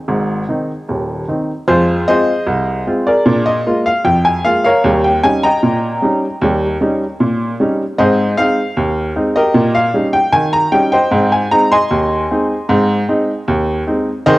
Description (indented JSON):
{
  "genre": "ragtime piano",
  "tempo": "76 BPM",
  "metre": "2/4",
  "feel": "straight",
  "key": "Ab major",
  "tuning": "A4 = 437 Hz",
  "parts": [
    { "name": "clear upright piano", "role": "solo", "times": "0.0-14.4 s", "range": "Eb1 to C6", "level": "-12 LUFS", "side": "equal", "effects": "cassette tape" }
  ],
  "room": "light reverb, small room reverb",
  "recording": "home recording on cassette",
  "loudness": "-12 LUFS",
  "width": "side -18 dB against mid",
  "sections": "0.0-1.7 A section; 1.7-14.4 B section",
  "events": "none",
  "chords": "0.0 Ab; 1.7 Fm; 3.3 Bb7; 4.8 Eb7; 8.0 Ab; 9.6 Eb7/Bb; 11.1 Ab",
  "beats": "| 0.08 0.88 | 1.68 2.47 | 3.26 4.05 | 4.83 5.62 | 6.41 7.20 | 7.98 8.77 | 9.55 10.33 | 11.12 11.90 | 12.69 13.47 | 14.26"
}